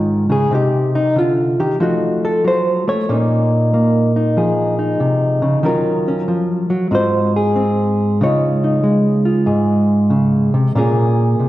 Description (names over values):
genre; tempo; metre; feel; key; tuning
solo jazz; 94 BPM; 4/4; swing 67% on 8ths; unclear; A4 = 438 Hz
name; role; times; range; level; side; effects
hollow-body jazz guitar; solo; 0.0-11.5 s; Ab2 to Db5; -14 LUFS; equal; none
room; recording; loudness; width
wet recital hall reverb, RT60 1.5 s; recorded in a church or concert hall; -14 LUFS; side -15 dB against mid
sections
0.0-11.5 A section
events
hollow-body jazz guitar solo 0.0-11.5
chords
0.0 Dbadd9; 0.5 Cmadd9; 1.8 F7b9; 3.1 Bbm11; 5.6 Ebm9; 6.9 Ab6; 8.2 Dbadd9; 10.8 Bbm7